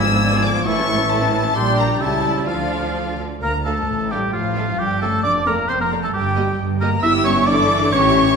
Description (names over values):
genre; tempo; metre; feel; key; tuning
quick classical-period movement for symphony orchestra; 134 BPM; 2/4; rubato; D minor; A4 = 437 Hz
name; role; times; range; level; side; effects
rich chamber violin section; melody; 0.0-8.4 s; D5 to E6; -25 LUFS; left 5 dB; none
clear oboe; second line; 0.0-8.4 s; F4 to F5; -22 LUFS; right 2 dB; none
dark chamber violin section; second line; 0.0-8.4 s; G4 to E6; -27 LUFS; left 2 dB; none
small flute group; second line; 0.0-8.4 s; F5 to A6; -26 LUFS; left 1 dB; none
rich chamber viola section; accompaniment; 0.0-8.4 s; D3 to A4; -26 LUFS; right 1 dB; none
warm bassoon; accompaniment; 0.0-3.2 s; E3 to G3; -27 LUFS; equal; none
mellow French horn section; sustained chords; 0.0-8.4 s; E3 to F4; -24 LUFS; left 4 dB; none
rich chamber double bass section; bass; 0.0-8.4 s; F1 to D2; -26 LUFS; right 4 dB; none
warm chamber cello section; bass; 0.0-8.4 s; D2 to D3; -25 LUFS; right 3 dB; none
room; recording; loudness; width
wet scoring stage reverb, RT60 1.8 s; minimal, uncompressed stereo recording; -16 LUFS; side -5 dB against mid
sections
0.0-3.4 A section; 3.4-8.4 A section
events
none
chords
0.0 G#dim7; 0.7 A; 1.6 Gm/Bb; 2.0 A7/C#; 2.5 Dm; 3.4 D5; 4.3 A; 4.8 A7/G; 5.2 Dm/F; 6.1 Eb/G (rootless); 7.0 Em/G; 7.9 A7